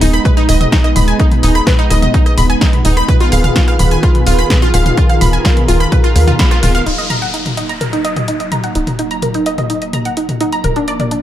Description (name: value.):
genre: melodic techno.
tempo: 127 BPM.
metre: 4/4.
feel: straight.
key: Eb harmonic minor.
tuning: A4 = 442 Hz.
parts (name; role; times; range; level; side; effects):
warm analog pad; sustained chords; 0.0-11.2 s; Eb3 to Cb5; -19 LUFS; right 1 dB; chorus, sidechain pumping.
wide unison pluck; arpeggios; 0.0-11.2 s; D4 to Cb6; -17 LUFS; right 1 dB; wide subtle chorus, sidechain pumping, analog delay.
tight sequencer bass; bass; 0.0-11.2 s; Eb1 to Eb2; -13 LUFS; equal; sidechain pumping.
punchy analog drum machine; drums; 0.0-11.2 s; hi-hat, rim click, snare drum, toms; -19 LUFS; left 1 dB; sidechain pumping on hats, sidechain pumping on toms.
electronic kick drum; drums; 0.3-6.5 s; none; -13 LUFS; equal; none.
downlifter; sound effects; 6.9-10.6 s; none; -24 LUFS; left 1 dB; none.
room: light reverb.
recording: none.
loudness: -10 LUFS.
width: side -12 dB against mid.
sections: 0.0-6.9 A section; 6.9-11.2 B section.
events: drop 0.0-6.9; band accent 6.4; filter sweep on synth pluck 6.9-11.2; filter sweep on analog synth pad 6.9-11.2.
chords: 0.0 Abm/Eb; 3.1 Fdim/Eb; 6.9 Ebm; 10.6 Bb/Eb.